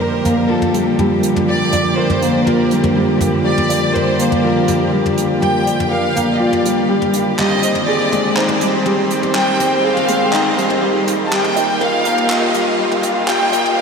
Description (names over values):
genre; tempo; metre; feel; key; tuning
piano and strings electronica; 122 BPM; 4/4; straight; Bb major; A4 = 444 Hz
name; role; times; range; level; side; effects
rich chamber violin section; melody; 0.0-13.8 s; A4 to A5; -19 LUFS; equal; tape echo
dark string quartet; sustained chords; 0.0-13.8 s; D3 to G4; -20 LUFS; right 1 dB; none
felt-muted upright piano; riff; 0.0-13.8 s; G3 to Eb5; -17 LUFS; left 1 dB; tape echo
soft brush drum kit; drums; 0.3-13.8 s; handclaps, hi-hat, toms; -23 LUFS; equal; none
room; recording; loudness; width
wet huge ambient reverb, RT60 7.9 s; dreamy mix soaked in reverb, high-pass filter; -13 LUFS; side -5 dB against mid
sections
0.0-13.8 A section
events
build-up 0.0-13.8; filter sweep 0.0-13.8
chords
0.0 Bb6; 6.9 Abmaj7; 10.8 Ebadd9